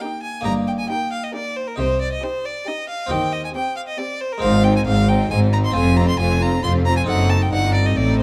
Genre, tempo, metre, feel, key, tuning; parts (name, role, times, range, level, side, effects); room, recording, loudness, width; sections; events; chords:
classical, baroque-style concerto movement with solo episodes; 135 BPM; 3/4; straight; A4 = 440 Hz
clear violin; melody; 0.0-8.2 s; Bb4 to C6; -26 LUFS; equal
rich chamber violin section; melody; 0.0-8.2 s; G4 to C5; -38 LUFS; equal
rich studio violin section; second line; 0.0-8.2 s; Eb4 to G4; -33 LUFS; equal
harpsichord; accompaniment; 0.0-8.2 s; F2 to C5; -28 LUFS; equal
rich studio viola section; accompaniment; 0.0-8.2 s; C4 to Eb4; -30 LUFS; equal
clear chamber cello section; bass; 0.5-8.2 s; F2 to Eb3; -24 LUFS; equal
clear chamber double bass section; bass; 0.5-8.2 s; F1 to Eb2; -23 LUFS; equal
light reverb; close, detailed microphones; -20 LUFS; mono
0.0-8.2 A section
0.5 Eb/G; 1.8 Cm; 3.1 Cm/Eb; 4.4 Ab; 5.8 F5; 7.1 F#dim7